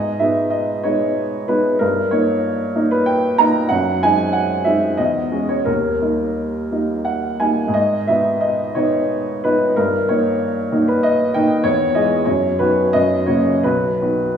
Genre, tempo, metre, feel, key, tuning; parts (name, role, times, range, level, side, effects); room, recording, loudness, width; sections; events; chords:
classical, romantic character piece for solo piano; 81-100 BPM; 3/4; rubato; G# minor; A4 = 440 Hz
clear upright piano; solo; 0.0-14.4 s; B1 to A#5; -16 LUFS; equal
wet recital hall reverb, RT60 1.6 s; heard from further back in the room, small room ambience; -15 LUFS; side -8 dB against mid
0.0-14.4 A section
0.0 G#m; 1.8 D#7/G; 3.7 G#7/F#; 5.0 C#m/E; 5.7 D#; 7.8 G#m; 9.8 D#7/G; 11.6 C#m/E; 12.3 B/F#; 12.9 F#; 13.6 B